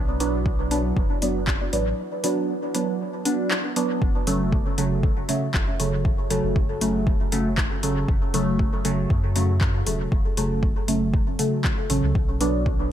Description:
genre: dub techno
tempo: 118 BPM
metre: 4/4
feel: straight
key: F# minor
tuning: A4 = 438 Hz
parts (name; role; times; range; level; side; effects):
- soft dub sub bass; bass; 0.0-12.9 s; E1 to F#2; -27 LUFS; equal; tube saturation, sidechain pumping
- drifting glass-harmonics texture; texture; 0.0-4.0 s; E3 to E4; -43 LUFS; equal; none
- deep mellow chord stab; stabs; 0.2-12.7 s; C#3 to D4; -24 LUFS; right 1 dB; chorus, phaser, sidechain pumping, dub echo
- deep house drum kit; drums; 0.2-12.5 s; handclaps, hi-hat; -28 LUFS; left 1 dB; overdrive, dub echo
- electronic kick drum; drums; 0.5-12.8 s; none; -23 LUFS; equal; none
room: light reverb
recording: none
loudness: -20 LUFS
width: side -10 dB against mid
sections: 0.0-4.0 A section; 4.0-12.9 A section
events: filter sweep on synth stab 4.0-12.9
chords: 0.0 Bm; 4.0 F#m; 12.2 Bm

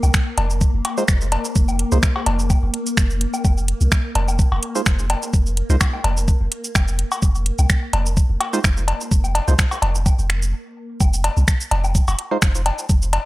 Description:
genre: minimal techno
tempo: 127 BPM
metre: 4/4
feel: swing 54% on 16ths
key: unclear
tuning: A4 = 440 Hz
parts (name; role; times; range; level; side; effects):
- punchy sub bass; bass; 0.0-13.2 s; F1 to C2; -20 LUFS; equal; sidechain pumping
- garage drum kit; drums; 0.0-13.2 s; finger snaps, hi-hat, shaker; -23 LUFS; right 1 dB; none
- woodblock and cowbell; percussion; 0.0-13.2 s; none; -25 LUFS; left 2 dB; tape echo
- swarming drone; texture; 0.0-10.5 s; Bb3; -30 LUFS; left 2 dB; built-in reverb, sidechain pumping
- electronic kick drum; drums; 0.1-13.0 s; none; -17 LUFS; equal; none
- percussive organ stab; stabs; 1.0-12.4 s; Ab3 to C5; -25 LUFS; right 2 dB; chorus, phaser, tape echo
room: digital ambience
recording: dry, gritty hardware recording, transformer saturation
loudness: -16 LUFS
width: side -18 dB against mid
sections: 0.0-11.0 A section; 11.0-13.3 B section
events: stop 10.5-11.0; drop 11.0-13.3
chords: none

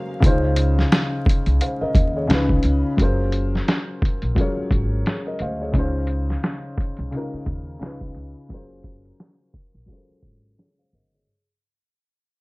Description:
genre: lo-fi hip hop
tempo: 87 BPM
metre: 4/4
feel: swing 58% on 16ths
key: Db major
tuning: A4 = 443 Hz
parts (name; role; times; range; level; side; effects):
- dark upright piano; accompaniment; 0.0-11.5 s; Db3 to F5; -24 LUFS; left 1 dB; cassette tape
- upright bass; bass; 0.2-11.2 s; Gb1 to Eb2; -23 LUFS; equal; none
- lo-fi sampler-style drum kit; drums; 0.2-11.2 s; hi-hat, kick drum, snare drum; -20 LUFS; equal; overdrive, vintage 12-bit sampler grit
room: light reverb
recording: dark, warm production, vinyl crackle, low-pass filter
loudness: -19 LUFS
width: side -24 dB against mid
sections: 0.2-11.3 A section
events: break 0.0; fade-out 0.2-11.3; filter sweep 0.2-11.3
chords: 0.2 Dbmaj7; 2.3 Db7; 3.0 Gbmaj9#11; 5.7 Dbmaj7; 7.8 Db7; 8.5 Gbmaj9#11

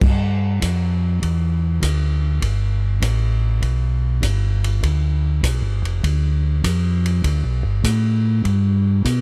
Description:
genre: soul jazz organ trio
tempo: 100 BPM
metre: 4/4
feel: swing 68% on 8ths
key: G mixolydian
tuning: A4 = 442 Hz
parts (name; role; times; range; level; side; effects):
- mellow tonewheel organ; bass; 0.0-9.2 s; F1 to B2; -20 LUFS; equal; slow rotary speaker
- swinging big-band drum kit; drums; 0.0-9.2 s; crash cymbal, hi-hat, kick drum, ride cymbal; -28 LUFS; equal; none
room: little or no reverb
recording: dry, close 1970s-style studio recording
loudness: -20 LUFS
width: mono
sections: 0.0-9.2 A section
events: none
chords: none

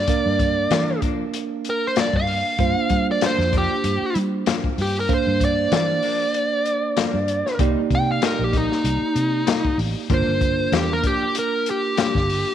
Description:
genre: straight-eighth soul blues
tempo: 96 BPM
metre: 4/4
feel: swing 56% on 16ths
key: G minor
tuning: A4 = 438 Hz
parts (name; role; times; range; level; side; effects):
- dark smooth lead guitar; melody; 0.0-12.5 s; Eb4 to G5; -22 LUFS; equal; overdrive
- tine electric piano; accompaniment; 0.0-12.5 s; Bb3 to F5; -26 LUFS; right 9 dB; none
- vintage muted fingered electric bass; bass; 0.0-12.4 s; G1 to G3; -24 LUFS; equal; none
- crunchy breakbeat drum kit; drums; 0.1-12.5 s; hi-hat, kick drum, snare drum; -24 LUFS; left 3 dB; none
- direct-recorded clean electric guitar; stabs; 0.7-12.2 s; G2 to Eb4; -31 LUFS; left 8 dB; lush chorus
room: light reverb, small room ambience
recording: 1960s-style stereo with parts hard left and right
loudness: -18 LUFS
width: side -10 dB against mid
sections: 0.0-12.5 A section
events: lead electric guitar solo 0.0-12.5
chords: 0.0 Gm7; 7.6 Cm7; 10.1 Gm7

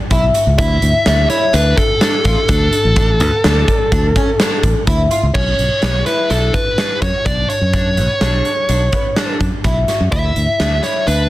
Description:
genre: progressive instrumental, band music in an uneven meter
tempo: 126 BPM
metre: 5/4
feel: straight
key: B minor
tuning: A4 = 440 Hz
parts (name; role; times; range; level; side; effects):
- picked twelve-string acoustic guitar; arpeggios; 0.1-11.3 s; B3 to F#4; -21 LUFS; left 1 dB; none
- modern bright fingered electric bass; bass; 0.1-11.3 s; A1 to F#2; -16 LUFS; equal; none
- big rock drum kit; drums; 0.1-11.2 s; crash cymbal, hi-hat, kick drum, snare drum; -18 LUFS; equal; none
- dark smooth lead guitar; melody; 0.6-11.3 s; A4 to E5; -17 LUFS; equal; overdrive
room: moderate studio reverb, RT60 0.8 s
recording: dense, heavily limited modern master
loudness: -12 LUFS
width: side -16 dB against mid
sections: 0.0-5.3 A section; 5.3-11.3 B section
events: none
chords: 0.0 Bsus2; 0.6 D5; 5.3 Bmadd9; 10.1 Dsus2

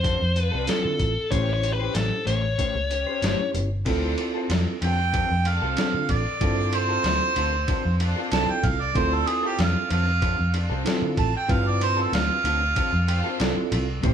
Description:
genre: straight-eighth soul blues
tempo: 94 BPM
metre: 4/4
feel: swing 53% on 16ths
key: unclear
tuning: A4 = 440 Hz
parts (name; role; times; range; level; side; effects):
- biting lead guitar; melody; 0.0-3.5 s; A4 to C#5; -26 LUFS; left 3 dB; overdrive
- electric guitar through a small old amp; stabs; 0.0-14.1 s; D3 to B#4; -33 LUFS; left 6 dB; none
- vintage muted fingered electric bass; bass; 0.0-14.1 s; G1 to D3; -25 LUFS; equal; none
- lo-fi sampler-style drum kit; drums; 0.0-14.1 s; crash cymbal, hi-hat, kick drum, ride cymbal, snare drum; -28 LUFS; left 1 dB; none
- rich studio string section; sustained chords; 0.4-14.1 s; C4 to C#5; -37 LUFS; equal; none
- bell-like tine electric piano; accompaniment; 0.7-14.1 s; C4 to G5; -29 LUFS; right 4 dB; medium stereo tremolo
- warm harmonica; second line; 4.8-13.4 s; F4 to A5; -25 LUFS; right 4 dB; overdrive
room: moderate stone room reverb, RT60 1.1 s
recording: band playing live in one room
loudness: -21 LUFS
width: side -8 dB against mid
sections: 0.0-3.9 A section; 3.9-14.1 B section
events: harmonica solo 3.9-14.1; tine electric piano fill 12.8-14.0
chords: 0.0 Dm7; 1.3 A7#9; 3.9 Dm7

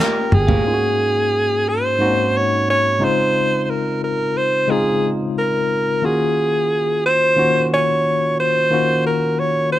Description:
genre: lush 1970s-style soul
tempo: 89 BPM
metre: 4/4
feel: straight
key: unclear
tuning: A4 = 439 Hz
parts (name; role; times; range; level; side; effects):
- warm alto saxophone; melody; 0.0-9.8 s; Ab4 to Db5; -17 LUFS; right 1 dB; none
- tine electric piano; accompaniment; 0.0-9.8 s; Ab2 to G4; -21 LUFS; left 2 dB; medium stereo tremolo
- electric guitar through a small old amp; riff; 0.0-0.6 s; C#4 to E#5; -29 LUFS; right 4 dB; none
- vibraphone with soft mallets; texture; 0.0-0.7 s; G5; -31 LUFS; right 5 dB; none
- vintage muted fingered electric bass; bass; 0.3-0.6 s; G1; -19 LUFS; equal; tube saturation
- toms; drums; 0.3-0.6 s; none; -17 LUFS; equal; none
- congas; percussion; 0.5-0.6 s; none; -28 LUFS; right 7 dB; none
room: studio reverb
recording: none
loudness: -15 LUFS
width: side -13 dB against mid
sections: 0.7-9.8 A section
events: drum fill 0.0-0.7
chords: 0.0 D#7; 0.7 Ab7sus4; 3.0 Dbmaj7; 6.0 Ebm7

